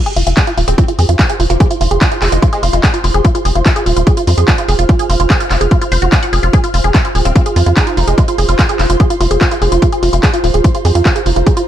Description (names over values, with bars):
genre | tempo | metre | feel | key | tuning
psychedelic trance | 146 BPM | 4/4 | straight | F minor | A4 = 440 Hz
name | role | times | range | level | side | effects
ethereal airy pad | texture | 0.3-11.7 s | F4 to F6 | -20 LUFS | right 2 dB | ensemble chorus, built-in reverb, sidechain pumping
wide unison pluck | riff | 0.1-11.6 s | F4 to Gb5 | -17 LUFS | moving between left 3 dB and right 6 dB | auto-pan, sidechain pumping, tape echo
techno drum kit | drums | 0.1-11.7 s | handclaps, hi-hat | -19 LUFS | equal | none
tight sequencer bass | bass | 0.2-11.4 s | Eb1 to F2 | -13 LUFS | equal | none
electronic kick drum | drums | 0.4-11.5 s | none | -11 LUFS | equal | none
metallic wobble bass | second line | 0.7-2.9, 7.3-8.7 s | Ab3 to F4 | -26 LUFS | right 2 dB | distortion, wide subtle chorus, cassette tape, sidechain pumping, high-pass filter, ping-pong delay
room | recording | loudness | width
little or no reverb | dark, warm production | -10 LUFS | side -11 dB against mid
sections
0.0-11.7 A section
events
none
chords
0.0 F5